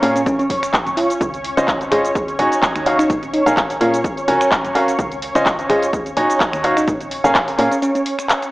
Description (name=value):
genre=piano house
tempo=127 BPM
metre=4/4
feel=swing 54% on 16ths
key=unclear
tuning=A4 = 437 Hz
part: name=bell-like FM electric piano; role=melody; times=0.0-8.0 s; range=Db4 to Ab4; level=-20 LUFS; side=equal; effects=chorus, tremolo, cassette tape, analog delay
part: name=analog string pad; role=sustained chords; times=0.0-8.5 s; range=Db4 to Db5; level=-23 LUFS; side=equal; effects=ensemble chorus, sidechain pumping
part: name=clear grand piano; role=riff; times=0.0-7.7 s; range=Db4 to Ab5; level=-18 LUFS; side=equal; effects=sidechain pumping, analog delay
part: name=solid FM bass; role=bass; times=0.0-7.7 s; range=Gb1 to Bb2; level=-28 LUFS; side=equal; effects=tube saturation, sidechain pumping
part: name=house drum kit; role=drums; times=0.0-8.5 s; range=finger snaps, handclaps, hi-hat, shaker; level=-21 LUFS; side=equal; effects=studio reverb, analog delay
part: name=electronic kick drum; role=drums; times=0.3-7.5 s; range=none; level=-25 LUFS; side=equal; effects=studio reverb
room=moderate spring reverb, RT60 1.5 s, digital ambience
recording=echo-heavy mix, small speaker sound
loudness=-15 LUFS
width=side -20 dB against mid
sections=0.0-8.5 A section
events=break 7.8-8.5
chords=0.3 Gb5; 1.2 Dbmaj9; 2.2 Ebm9; 3.1 Bbm7; 4.0 Gbmaj7; 5.0 Dbmaj9; 5.9 Ebm9; 6.9 Bbm7; 7.8 N.C.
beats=0.26 0.73 | 1.21 1.68 2.15 2.62 | 3.10 3.57 4.04 4.51 | 4.99 5.46 5.93 6.41 | 6.88 7.35 7.82 8.29